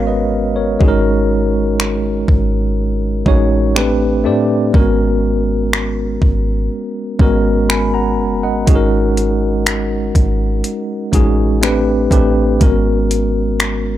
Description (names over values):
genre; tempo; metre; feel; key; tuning
contemporary R&B; 61 BPM; 4/4; straight; unclear; A4 = 441 Hz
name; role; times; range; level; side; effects
tine electric piano; accompaniment; 0.0-14.0 s; G#3 to B5; -16 LUFS; equal; medium stereo tremolo
clean 808-style bass; bass; 0.0-14.0 s; F#1 to A2; -18 LUFS; equal; none
gated 80s digital drum machine; drums; 0.8-13.8 s; finger snaps, hi-hat, kick drum; -14 LUFS; equal; overdrive
room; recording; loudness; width
little or no reverb; dry, gritty hardware recording, transformer saturation; -13 LUFS; side -12 dB against mid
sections
0.0-14.0 A section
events
none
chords
0.0 G#m11; 0.8 F#69/G#; 3.8 Am11; 4.7 G#m11; 8.7 F#69/G#; 11.6 Am11; 12.6 G#m11